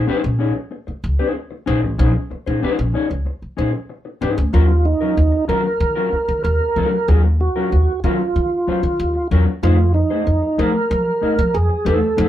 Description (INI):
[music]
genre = funk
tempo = 94 BPM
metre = 4/4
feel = straight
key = unclear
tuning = A4 = 440 Hz
[part]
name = mellow electric guitar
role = accompaniment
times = 0.0-12.3 s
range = Gb3 to Eb5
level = -22 LUFS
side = left 4 dB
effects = none
[part]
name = upright bass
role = bass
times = 0.0-12.3 s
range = Ab1 to F3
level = -17 LUFS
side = equal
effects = none
[part]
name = mellow tonewheel organ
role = melody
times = 4.5-12.3 s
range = Eb4 to Bb4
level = -19 LUFS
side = right 3 dB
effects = overdrive, chorus vibrato, slow rotary speaker
[sound]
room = light reverb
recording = band playing live in one room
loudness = -16 LUFS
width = side -12 dB against mid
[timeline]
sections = 0.0-4.5 A section; 4.5-12.3 B section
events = none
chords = 0.0 Bbm11; 4.5 Ebm9; 9.6 F7#9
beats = 0.08 0.71 1.35 | 1.99 2.62 3.26 3.90 | 4.53 5.17 5.81 6.45 | 7.08 7.72 8.36 8.99 | 9.63 10.27 10.90 11.54 | 12.18